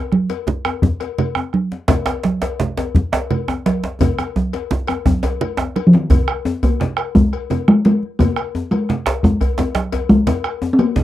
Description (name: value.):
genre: west african traditional, West African drum ensemble.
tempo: 114 BPM (dotted quarters).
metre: 12/8.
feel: straight.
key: unclear.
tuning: A4 = 440 Hz.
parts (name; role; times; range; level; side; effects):
bombo; percussion; 0.1-11.0 s; none; -20 LUFS; equal; none.
congas; percussion; 0.1-11.0 s; none; -20 LUFS; right 4 dB; none.
cowbell; percussion; 0.3-11.0 s; none; -28 LUFS; left 13 dB; none.
djembe; percussion; 0.3-11.0 s; none; -23 LUFS; left 3 dB; none.
djembe; percussion; 0.5-11.0 s; none; -20 LUFS; right 1 dB; none.
talking drum; melody; 5.9-11.0 s; Eb3 to C4; -13 LUFS; equal; none.
room: moderate booth ambience, RT60 0.2 s.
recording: dry, close 1970s-style studio recording.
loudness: -15 LUFS.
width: side -14 dB against mid.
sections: 0.0-6.1 A section; 6.1-11.0 B section.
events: drum fill 4.0-6.1.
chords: none.